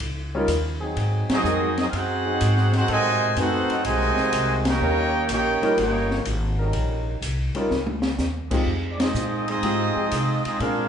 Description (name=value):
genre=jazz, big band swing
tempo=124 BPM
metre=4/4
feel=swing 68% on 8ths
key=unclear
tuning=A4 = 440 Hz
part: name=upright bass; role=bass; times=0.0-10.9 s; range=G1 to C3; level=-26 LUFS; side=equal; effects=none
part: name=open jazz drum kit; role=drums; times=0.0-10.8 s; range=crash cymbal, hi-hat, kick drum, ride cymbal, snare drum, toms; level=-29 LUFS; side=left 1 dB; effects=none
part: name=warm grand piano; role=accompaniment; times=0.3-10.9 s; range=G3 to Cb5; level=-26 LUFS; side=left 1 dB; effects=none
part: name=warm trombone section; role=sustained chords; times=0.8-10.1 s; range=F3 to Bb4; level=-32 LUFS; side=equal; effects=none
part: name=warm trumpet section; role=melody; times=1.3-10.9 s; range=C4 to Ab5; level=-24 LUFS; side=right 1 dB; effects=none
part: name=clear trombone section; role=second line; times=1.3-10.9 s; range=C3 to G4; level=-27 LUFS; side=right 1 dB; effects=none
room=wet large studio reverb, RT60 1.2 s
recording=band playing live in one room, nothing above 10.4 kHz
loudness=-20 LUFS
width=side -8 dB against mid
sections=0.0-10.9 A section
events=band accent 1.2, 4.6, 8.9; drum fill 7.7-8.2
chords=0.0 Eb7; 1.0 Ab7; 2.9 Adim7; 4.8 Eb7; 8.7 Fm7